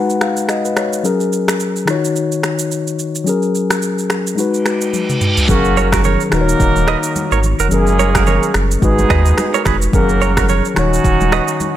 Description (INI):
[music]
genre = afrobeats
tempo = 108 BPM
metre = 4/4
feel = swing 58% on 16ths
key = F# major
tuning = A4 = 440 Hz
[part]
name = mellow tine electric piano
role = accompaniment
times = 0.0-11.8 s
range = D#3 to F#5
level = -17 LUFS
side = left 3 dB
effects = none
[part]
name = downlifter and reverse cymbal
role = sound effects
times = 0.0-1.0, 4.7-5.5 s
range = none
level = -22 LUFS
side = right 2 dB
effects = none
[part]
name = afro-pop drum kit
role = drums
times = 0.1-11.8 s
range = finger snaps, kick drum, rim click, shaker, toms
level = -19 LUFS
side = right 1 dB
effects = none
[part]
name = clear horn section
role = second line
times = 5.5-11.8 s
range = F#3 to A#4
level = -20 LUFS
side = right 3 dB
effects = none
[part]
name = saturated sub bass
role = bass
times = 5.5-11.4 s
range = D#1 to D#2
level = -17 LUFS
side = right 1 dB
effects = none
[part]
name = congas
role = percussion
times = 5.5-11.8 s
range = none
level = -26 LUFS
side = right 2 dB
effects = none
[part]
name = direct-recorded clean electric guitar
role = riff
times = 5.8-11.4 s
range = F#4 to D#5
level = -20 LUFS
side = right 10 dB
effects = spring reverb, tape echo
[sound]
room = light reverb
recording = none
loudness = -13 LUFS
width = side -12 dB against mid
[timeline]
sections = 0.0-5.5 A section; 5.5-11.8 B section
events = tine electric piano fill 0.0-1.0; reverse cymbal 4.7-5.5; drum fill 4.9-5.5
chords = 0.0 G#m7; 1.0 F#add9; 1.9 D#m7; 3.3 F#add9; 4.4 G#m7; 5.5 F#add9; 6.3 D#m7; 7.7 F#add9; 8.8 G#m7; 9.9 F#add9; 10.8 D#m7